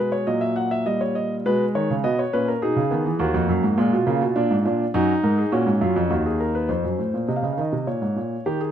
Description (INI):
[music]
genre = classical, baroque-style 3-part fugue for grand piano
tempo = 102 BPM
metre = 3/4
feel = straight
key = G# minor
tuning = A4 = 439 Hz
[part]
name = warm concert grand piano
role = solo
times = 0.0-8.7 s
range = D#2 to F#5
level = -20 LUFS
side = equal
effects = none
[sound]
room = moderate stone room reverb, RT60 1.2 s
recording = close, detailed microphones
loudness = -20 LUFS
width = side -9 dB against mid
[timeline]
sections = 0.0-6.7 A section; 6.7-8.7 B section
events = none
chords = 0.0 G#m/B; 0.9 D#7/A#; 1.5 G#m/B; 3.2 D#m; 4.4 A#7; 4.9 D#m/F#; 6.1 D#m; 6.7 F7; 7.9 A#m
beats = 0.27 0.86 | 1.46 2.04 2.62 | 3.19 3.78 4.36 | 4.94 5.52 6.10 | 6.69 7.28 7.87 | 8.46